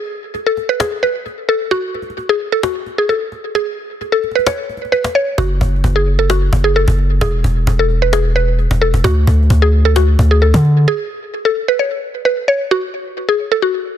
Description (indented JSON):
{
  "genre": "hip hop, trap",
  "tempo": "131 BPM",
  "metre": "4/4",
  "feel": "half-time",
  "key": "unclear",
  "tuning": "A4 = 441 Hz",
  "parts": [
    { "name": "mallet-like synth pluck", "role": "melody", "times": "0.0-14.0 s", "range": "F#4 to C#5", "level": "-16 LUFS", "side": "equal", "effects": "chorus, low-pass filter, tape echo" },
    { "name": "cajon", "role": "drums", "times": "0.3-10.7 s", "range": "none", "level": "-20 LUFS", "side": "equal", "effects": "none" },
    { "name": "long sustained 808-style bass", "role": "bass", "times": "5.4-10.9 s", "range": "E1 to D3", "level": "-12 LUFS", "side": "equal", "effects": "none" }
  ],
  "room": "little or no reverb",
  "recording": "dense, heavily limited modern master",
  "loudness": "-13 LUFS",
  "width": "side -10 dB against mid",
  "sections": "0.0-12.7 A section; 12.7-14.0 B section",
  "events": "break 0.0-5.4, 10.9-12.7",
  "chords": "0.0 N.C.; 7.2 E; 9.0 D; 10.9 N.C.",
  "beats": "0.34 0.80 1.26 | 1.72 2.17 2.63 3.09 | 3.55 4.01 4.46 4.92 | 5.38 5.84 6.30 6.75 | 7.21 7.67 8.13 8.59 | 9.04 9.50 9.96 10.42 | 10.88 11.34 11.79 12.25 | 12.71 13.17 13.62"
}